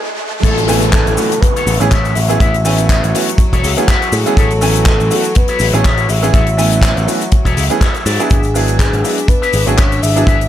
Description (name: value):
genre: nu-disco, nu disco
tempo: 122 BPM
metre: 4/4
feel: swing 55% on 16ths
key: A major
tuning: A4 = 439 Hz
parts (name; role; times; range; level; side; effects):
- riser and downlifter; sound effects; 0.0-4.4 s; none; -23 LUFS; equal; none
- soft octave-layered synth lead; melody; 0.4-10.5 s; F#4 to E5; -20 LUFS; left 1 dB; chorus, dub echo
- warm studio string section; sustained chords; 0.4-10.5 s; F#3 to E5; -24 LUFS; left 1 dB; sidechain pumping
- electric guitar with an envelope filter; riff; 0.4-10.4 s; E4 to E5; -22 LUFS; left 5 dB; lush chorus
- picked electric bass with an envelope filter; bass; 0.4-10.5 s; E1 to A2; -16 LUFS; equal; sidechain pumping
- damped 70s drum kit; drums; 0.4-10.5 s; cabasa, crash cymbal, handclaps, hi-hat; -20 LUFS; left 3 dB; small room ambience
- kick drum; drums; 0.4-10.4 s; none; -12 LUFS; equal; small room ambience
- bright baby grand piano; accompaniment; 0.7-10.3 s; E3 to G#5; -19 LUFS; right 3 dB; none
room: small room ambience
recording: high-pass filter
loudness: -10 LUFS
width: side -12 dB against mid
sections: 0.4-10.5 A section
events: riser 0.0-0.4; stop 0.0-0.4; drop 0.4-10.5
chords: 0.2 N.C.; 0.4 Amaj7; 8.1 E7